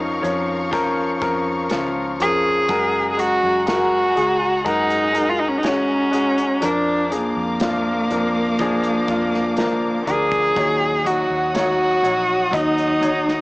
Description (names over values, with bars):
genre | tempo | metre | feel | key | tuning
pop ballad | 61 BPM | 4/4 | straight | unclear | A4 = 440 Hz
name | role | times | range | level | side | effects
clear baby grand piano | accompaniment | 0.0-13.4 s | Bb2 to Eb5 | -22 LUFS | left 2 dB | cassette tape
clear studio string section | sustained chords | 0.0-13.4 s | Ab4 to Eb6 | -28 LUFS | equal | cassette tape
vintage muted fingered electric bass | bass | 0.0-13.4 s | Bb1 to Gb2 | -33 LUFS | equal | none
modern studio drum kit | drums | 0.2-13.4 s | hi-hat, kick drum, snare drum | -29 LUFS | equal | cassette tape
rich cello | melody | 2.2-13.4 s | Bb3 to Ab4 | -18 LUFS | equal | cassette tape
room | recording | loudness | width
moderate booth ambience, RT60 0.2 s | home recording on cassette, small speaker sound | -17 LUFS | side -23 dB against mid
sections
0.0-13.4 A section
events
none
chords
0.0 Bbm/F; 2.7 Gbadd9; 6.6 Bb/F; 10.6 Ebm7